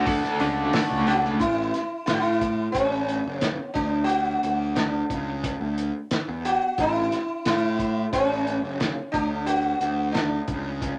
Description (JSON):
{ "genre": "psychedelic rock", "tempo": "89 BPM", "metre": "4/4", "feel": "straight", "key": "A major", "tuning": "A4 = 439 Hz", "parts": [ { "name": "combo organ", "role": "sustained chords", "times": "0.0-1.4 s", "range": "A4 to A5", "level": "-30 LUFS", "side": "equal", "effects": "none" }, { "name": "biting overdriven guitar", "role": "riff", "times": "0.0-1.4 s", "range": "D3 to A4", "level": "-27 LUFS", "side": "equal", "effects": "tremolo" }, { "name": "fuzz picked electric bass", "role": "bass", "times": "0.0-10.9 s", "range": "F#1 to A2", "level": "-30 LUFS", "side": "equal", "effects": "overdrive" }, { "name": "cloth-damped thuddy drum kit", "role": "drums", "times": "0.1-11.0 s", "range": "hi-hat, kick drum, snare drum", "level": "-32 LUFS", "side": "equal", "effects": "none" }, { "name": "sitar", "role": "melody", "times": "1.1-11.0 s", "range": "C#4 to F#4", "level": "-27 LUFS", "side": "equal", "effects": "none" } ], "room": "wet small room reverb, RT60 0.5 s", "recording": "none", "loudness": "-25 LUFS", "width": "mono", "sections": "0.0-1.4 A section; 1.4-11.0 B section", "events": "none", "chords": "0.0 D; 1.4 A; 3.8 D; 6.8 A; 9.1 D" }